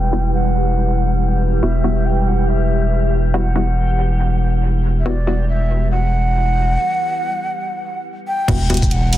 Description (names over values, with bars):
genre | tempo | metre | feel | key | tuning
deep dubstep | 140 BPM | 4/4 | swing 60% on 16ths, half-time | E minor | A4 = 440 Hz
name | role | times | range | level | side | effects
breathy ney | melody | 0.0-9.2 s | D5 to G5 | -23 LUFS | right 1 dB | dub echo
deep dark ambient pad | sustained chords | 0.0-9.2 s | E4 to B4 | -28 LUFS | left 4 dB | chorus, built-in reverb
filtered dub chord stab | stabs | 0.0-5.3, 8.5-8.8 s | G3 to F#4 | -25 LUFS | left 2 dB | chorus, dub echo
saturated sub bass | bass | 0.0-9.2 s | E1 | -17 LUFS | equal | none
backwards swelling texture | texture | 0.0-6.8 s | G3 to G4 | -26 LUFS | equal | built-in reverb
electronic kick drum | drums | 8.5-8.9 s | none | -20 LUFS | equal | none
garage drum kit | drums | 8.5-9.2 s | crash cymbal, hi-hat, shaker | -24 LUFS | equal | overdrive, studio reverb
sub drop | sound effects | 8.5-9.2 s | none | -23 LUFS | right 1 dB | none
room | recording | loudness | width
digital ambience | dense, heavily limited modern master, low-pass filter | -15 LUFS | side -13 dB against mid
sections
0.0-8.5 A section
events
filter sweep on synth stab 0.0-8.5; filter sweep 0.0-8.5; break 6.8-8.5; impact 8.5-9.2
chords
0.0 Emadd9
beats
0.34 0.77 1.20 | 1.63 2.06 2.48 2.91 | 3.34 3.77 4.20 4.63 | 5.06 5.49 5.91 6.34 | 6.77 7.20 7.63 8.06 | 8.48 8.91